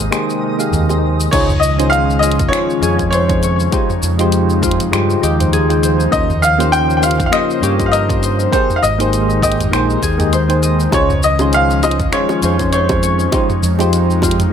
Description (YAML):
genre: sunset chillout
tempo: 100 BPM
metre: 4/4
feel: swing 56% on 16ths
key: unclear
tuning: A4 = 440 Hz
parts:
  - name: soft electric-piano-like synth keys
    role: accompaniment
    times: 0.0-14.5 s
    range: Ab3 to G5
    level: -19 LUFS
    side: equal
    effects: chorus, auto-pan, ping-pong delay
  - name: airy breathy pad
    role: sustained chords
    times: 0.0-14.5 s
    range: C3 to C5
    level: -22 LUFS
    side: equal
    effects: chorus
  - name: overdriven fingered electric bass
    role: bass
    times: 0.0-14.4 s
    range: Ab1 to G2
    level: -17 LUFS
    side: equal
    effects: none
  - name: twinkling granular texture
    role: texture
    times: 0.0-1.3 s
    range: Eb5 to Eb6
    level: -30 LUFS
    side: equal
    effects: built-in reverb
  - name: smooth R&B drum kit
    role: drums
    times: 0.1-14.5 s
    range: crash cymbal, finger snaps, hi-hat, shaker, toms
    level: -22 LUFS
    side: equal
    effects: none
  - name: bongos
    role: percussion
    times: 0.9-1.0, 10.9-14.4 s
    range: none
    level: -22 LUFS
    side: right 1 dB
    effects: none
  - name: bright baby grand piano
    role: melody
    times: 1.3-13.2 s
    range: C5 to G5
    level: -17 LUFS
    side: left 2 dB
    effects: ping-pong delay
  - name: Celtic harp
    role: arpeggios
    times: 1.3-14.5 s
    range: Eb4 to Eb5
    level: -22 LUFS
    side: left 5 dB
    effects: ping-pong delay
  - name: electronic kick drum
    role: drums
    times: 1.3-14.4 s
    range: none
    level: -21 LUFS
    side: right 1 dB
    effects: overdrive
room: light reverb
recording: none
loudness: -12 LUFS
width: side -8 dB against mid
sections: 0.0-1.3 A section; 1.3-14.5 B section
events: none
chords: 0.0 Abmaj7; 1.3 Dbmaj9; 3.7 Fm9; 6.1 Eb13; 8.5 Abmaj7; 10.9 Dbmaj9; 13.3 Fm9